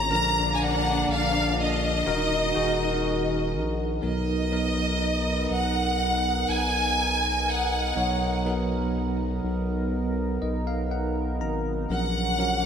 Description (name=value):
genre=pop ballad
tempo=61 BPM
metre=4/4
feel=straight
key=unclear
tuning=A4 = 440 Hz
part: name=rich studio violin section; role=melody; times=0.0-12.7 s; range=Eb5 to Bb5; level=-26 LUFS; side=equal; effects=tape echo
part: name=dark symphonic cello section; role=second line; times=0.0-3.5 s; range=D4 to Eb4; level=-32 LUFS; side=left 2 dB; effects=none
part: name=bell-like tine electric piano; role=accompaniment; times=0.0-12.7 s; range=Bb2 to A#5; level=-31 LUFS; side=right 1 dB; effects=medium stereo tremolo
part: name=chorused pulse-width pad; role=sustained chords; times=0.0-12.7 s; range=Db3 to Bb4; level=-31 LUFS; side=equal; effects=none
part: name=saturated sub bass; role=bass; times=0.0-12.7 s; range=Eb1 to B1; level=-29 LUFS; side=equal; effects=none
room=wet lush hall reverb, RT60 3.1 s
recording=dreamy mix soaked in reverb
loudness=-23 LUFS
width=side -7 dB against mid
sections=0.0-4.0 A section; 4.0-12.7 B section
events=tine electric piano fill 9.9-11.9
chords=0.1 Bb; 2.1 Ebm; 4.0 Bmaj7; 11.9 Gbmaj7/Bb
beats=| 0.10 1.08 2.06 3.05 | 4.03 5.01 6.00 6.98 | 7.96 8.95 9.93 10.91 | 11.90